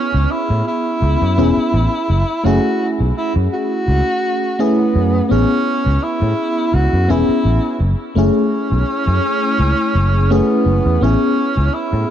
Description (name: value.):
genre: vaporwave.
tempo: 84 BPM.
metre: 4/4.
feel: swing 54% on 16ths.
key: A major.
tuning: A4 = 439 Hz.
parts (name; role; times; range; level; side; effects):
mellow tenor saxophone; melody; 0.0-12.1 s; B3 to F#4; -20 LUFS; right 2 dB; vintage 12-bit sampler grit, tape echo.
FM electric piano with soft pad layer; accompaniment; 0.0-12.1 s; A3 to G#4; -18 LUFS; left 1 dB; tremolo, analog chorus, tape echo.
sustaining fretless electric bass; bass; 0.1-12.0 s; E1 to A2; -15 LUFS; equal; none.
room: light reverb, studio reverb.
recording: dark, warm production.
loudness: -14 LUFS.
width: side -10 dB against mid.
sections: 0.0-12.1 A section.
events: none.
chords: 0.0 Amaj9; 2.1 F#m7; 5.3 Amaj9; 7.8 F#m7; 11.0 Amaj9.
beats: 0.31 1.02 1.74 | 2.45 3.17 3.88 4.60 | 5.31 6.03 6.74 7.45 | 8.17 8.88 9.60 10.31 | 11.03 11.74.